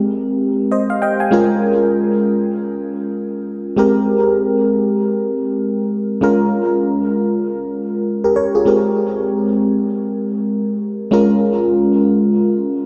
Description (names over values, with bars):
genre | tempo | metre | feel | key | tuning
R&B | free time | none | none | Bb dorian | A4 = 442 Hz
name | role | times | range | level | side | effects
FM electric piano | solo | 0.0-12.9 s | Ab3 to Ab5 | -17 LUFS | equal | chorus, phaser, diffuse ambient delay
room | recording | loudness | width
wet lush hall reverb, RT60 2.2 s | dreamy mix soaked in reverb | -17 LUFS | mono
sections
0.0-12.9 A section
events
none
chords
0.0 Abmaj9; 1.3 Bbm7; 3.8 Abmaj9; 6.2 Bbm7; 8.7 Abmaj9; 11.1 Bbm7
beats
free time